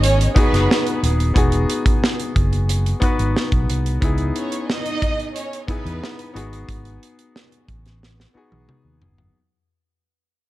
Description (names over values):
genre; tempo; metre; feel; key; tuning
lush 1970s-style soul; 90 BPM; 4/4; straight; unclear; A4 = 439 Hz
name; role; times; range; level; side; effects
warm studio violin section; second line; 0.0-6.3 s; B3 to D#5; -25 LUFS; right 3 dB; tape echo
clear concert grand piano; accompaniment; 0.0-9.4 s; B3 to B4; -24 LUFS; left 3 dB; none
fingered electric bass; bass; 0.0-9.3 s; D#1 to E2; -20 LUFS; equal; none
modern studio drum kit; drums; 0.0-9.3 s; hi-hat, kick drum, snare drum, toms; -20 LUFS; equal; none
room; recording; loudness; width
studio reverb; dark, warm production; -17 LUFS; side -16 dB against mid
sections
0.0-9.3 A section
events
fade-out 0.0-9.3; drum fill 8.0-9.3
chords
0.0 Emaj7 (rootless); 4.0 C#m7; 6.3 G#m7